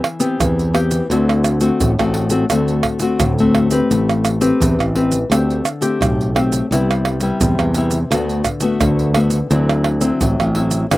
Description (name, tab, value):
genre	samba and choro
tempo	86 BPM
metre	4/4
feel	straight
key	unclear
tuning	A4 = 440 Hz
part	nylon-string guitar	accompaniment	0.0-11.0 s	A2 to B4	-17 LUFS	left 2 dB	none
part	pandeiro, tamborim, maracas and surdo	percussion	0.0-11.0 s	none	-21 LUFS	right 3 dB	none
part	modern bright fingered electric bass	bass	0.4-11.0 s	G1 to E2	-18 LUFS	right 1 dB	none
room	light reverb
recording	recorded outdoors, with no room sound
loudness	-14 LUFS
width	side -17 dB against mid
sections	0.0-11.0 A section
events	none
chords	0.0 Cmaj7/E; 1.1 D7; 3.9 Am9; 5.3 D7sus4; 6.7 Cmaj7; 8.1 Bm7/D; 9.5 D9